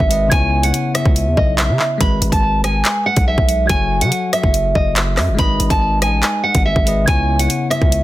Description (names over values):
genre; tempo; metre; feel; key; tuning
hip hop, drill; 142 BPM; 4/4; half-time; G# phrygian; A4 = 437 Hz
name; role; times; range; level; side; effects
nylon-string guitar; melody; 0.0-8.0 s; D#5 to B5; -18 LUFS; right 1 dB; low-pass filter
bell-like tine electric piano; accompaniment; 0.0-8.0 s; C#3 to D#5; -22 LUFS; left 3 dB; low-pass filter
distorted 808-style bass; bass; 0.0-8.0 s; F#1 to C#3; -18 LUFS; equal; distortion
drill drum kit; drums; 0.0-8.0 s; handclaps, hi-hat, kick drum, rim click; -17 LUFS; equal; none
room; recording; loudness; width
digital ambience; dense, heavily limited modern master; -13 LUFS; side -16 dB against mid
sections
0.0-8.0 A section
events
none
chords
0.3 C#m7; 2.0 G#m; 3.7 F#m; 5.4 G#m; 7.1 C#m7